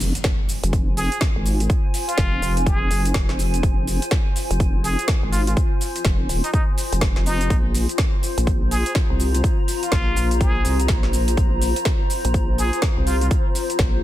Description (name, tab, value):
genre	bass house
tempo	124 BPM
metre	4/4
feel	swing 61% on 16ths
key	F minor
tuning	A4 = 440 Hz
part	vowel-sweep wobble bass	bass	0.0-14.0 s	Eb1 to C2	-21 LUFS	equal	chorus, tube saturation, sidechain pumping
part	garage drum kit	drums	0.0-13.9 s	hi-hat, shaker, snare drum	-27 LUFS	equal	overdrive
part	impact	sound effects	0.0-1.7 s	none	-32 LUFS	left 1 dB	none
part	granular cloud pad	texture	0.6-14.0 s	F4 to Bb5	-28 LUFS	left 2 dB	built-in reverb, sidechain pumping
part	electronic kick drum	drums	0.2-13.9 s	none	-20 LUFS	equal	overdrive
part	trumpet with plunger mute	melody	1.0-13.3 s	Eb4 to Ab4	-28 LUFS	equal	tape echo
room	little or no reverb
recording	dense, heavily limited modern master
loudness	-18 LUFS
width	side -14 dB against mid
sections	0.0-14.0 A section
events	impact 0.0-1.7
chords	0.0 Fm; 7.5 Bbsus2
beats	0.24 0.73 1.21 | 1.70 2.18 2.66 3.15 | 3.63 4.12 4.60 5.08 | 5.57 6.05 6.54 7.02 | 7.50 7.99 8.47 8.96 | 9.44 9.92 10.41 10.89 | 11.37 11.86 12.34 12.83 | 13.31 13.79